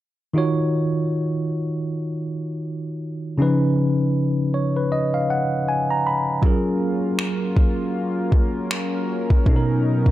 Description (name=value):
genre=contemporary R&B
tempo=79 BPM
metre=4/4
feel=swing 58% on 16ths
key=Eb minor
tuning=A4 = 442 Hz
part: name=tine electric piano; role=accompaniment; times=0.3-10.1 s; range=B2 to Cb6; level=-20 LUFS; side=equal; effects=slow stereo tremolo
part: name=warm analog pad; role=sustained chords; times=6.4-10.1 s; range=Gb3 to Bb4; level=-27 LUFS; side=left 2 dB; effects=chorus
part: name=smooth R&B drum kit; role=drums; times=6.4-10.1 s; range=finger snaps, kick drum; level=-19 LUFS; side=equal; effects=none
room=light reverb, digital ambience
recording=dark, warm production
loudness=-19 LUFS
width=side -14 dB against mid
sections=0.4-10.1 A section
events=tine electric piano fill 4.1-6.4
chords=0.4 Ebm7; 3.4 Db7; 6.4 Gbmaj7; 9.5 Bmaj9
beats=| 0.35 1.11 1.87 2.63 | 3.39 4.15 4.91 5.67 | 6.43 7.19 7.95 8.71 | 9.46